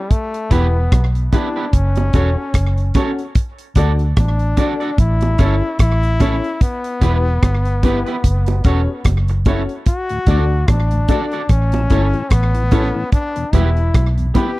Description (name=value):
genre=roots reggae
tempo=74 BPM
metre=4/4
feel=swing 57% on 16ths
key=D major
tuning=A4 = 440 Hz
part: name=brilliant trombone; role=melody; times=0.0-14.6 s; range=G3 to G4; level=-23 LUFS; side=left 2 dB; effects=dub echo
part: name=damped 70s drum kit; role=drums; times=0.1-14.6 s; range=hi-hat, kick drum, rim click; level=-15 LUFS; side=equal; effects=none
part: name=electric guitar at the edge of break-up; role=accompaniment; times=0.5-14.5 s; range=B3 to D5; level=-27 LUFS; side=right 5 dB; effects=dub echo
part: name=dark upright piano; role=stabs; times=0.5-14.6 s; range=B3 to D5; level=-23 LUFS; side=left 5 dB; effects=none
part: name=vintage muted fingered electric bass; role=bass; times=0.5-14.3 s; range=E1 to D2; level=-16 LUFS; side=equal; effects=none
part: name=bongos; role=percussion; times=0.5-14.6 s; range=none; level=-27 LUFS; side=right 6 dB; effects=none
part: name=mellow tonewheel organ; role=accompaniment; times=10.1-14.5 s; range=D2 to F#4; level=-25 LUFS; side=left 2 dB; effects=slow rotary speaker
room=little or no reverb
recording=dry, close 1970s-style studio recording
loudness=-14 LUFS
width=side -19 dB against mid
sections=0.0-14.6 A section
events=none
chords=0.1 Em; 1.7 F#m; 3.4 D; 5.0 A; 6.6 Em; 8.2 F#m; 9.9 D; 11.5 A; 13.1 Em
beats=| 0.10 0.91 1.73 2.54 | 3.35 4.17 4.98 5.79 | 6.61 7.42 8.24 9.05 | 9.87 10.68 11.49 12.31 | 13.12 13.94